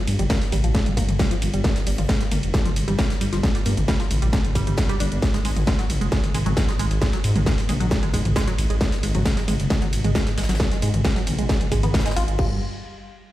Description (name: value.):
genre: driving peak-time techno.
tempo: 134 BPM.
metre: 4/4.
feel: straight.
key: unclear.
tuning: A4 = 440 Hz.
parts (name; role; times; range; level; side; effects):
tight sequenced synth; riff; 0.0-12.6 s; F3 to F4; -28 LUFS; right 1 dB; chorus, tube saturation, sidechain pumping, tape echo.
dark detuned saw bass; bass; 0.1-12.6 s; F1 to Ab2; -23 LUFS; equal; sidechain pumping.
soft brush drum kit; drums; 0.1-12.3 s; hi-hat, snare drum; -37 LUFS; left 2 dB; high-pass filter on hats, high-pass filter on snare, high-pass filter on room.
techno drum kit; drums; 0.1-12.5 s; crash cymbal, hi-hat, ride cymbal, snare drum, toms; -26 LUFS; left 1 dB; none.
electronic kick drum; drums; 0.3-12.5 s; none; -23 LUFS; equal; distortion.
room: light reverb.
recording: played on a big sound system in a bare room, large studio reverb.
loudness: -19 LUFS.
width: side -15 dB against mid.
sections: 0.0-12.4 A section.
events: drop 0.0-12.4.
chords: none.